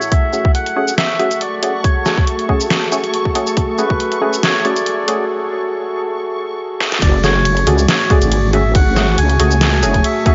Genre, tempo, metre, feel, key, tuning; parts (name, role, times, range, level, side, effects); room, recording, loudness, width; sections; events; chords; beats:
deep dubstep; 139 BPM; 4/4; swing 54% on 16ths, half-time; F# minor; A4 = 442 Hz
melodica; melody; 0.0-10.3 s; B4 to G#5; -23 LUFS; equal; dub echo
dark analog pad; sustained chords; 0.0-10.3 s; A3 to A4; -24 LUFS; equal; chorus
dubstep drum kit; drums; 0.0-10.3 s; hi-hat, ride cymbal, shaker, snare drum; -22 LUFS; equal
backwards swelling texture; texture; 0.0-10.3 s; A3 to C#6; -28 LUFS; equal; built-in reverb
electronic kick drum; drums; 0.1-4.0, 7.0-10.3 s; -17 LUFS; equal
filtered dub chord stab; stabs; 0.3-10.3 s; C#3 to G#4; -24 LUFS; equal; chorus, dub echo
wobble bass; bass; 7.0-10.0 s; F#1 to C#2; -17 LUFS; equal; chorus
light reverb; high-pass filter, nothing above 7.5 kHz; -15 LUFS; mono
0.1-7.0 A section; 7.0-10.3 B section
build-up 0.1-7.0; break 5.3-7.0; drum fill 6.8; drop 7.0-10.3
0.1 F#madd9
| 0.12 0.55 0.98 1.41 | 1.84 2.27 2.71 3.14 | 3.57 4.00 4.43 4.86 | 5.30 5.73 6.16 6.59 | 7.02 7.45 7.89 8.32 | 8.75 9.18 9.61 10.04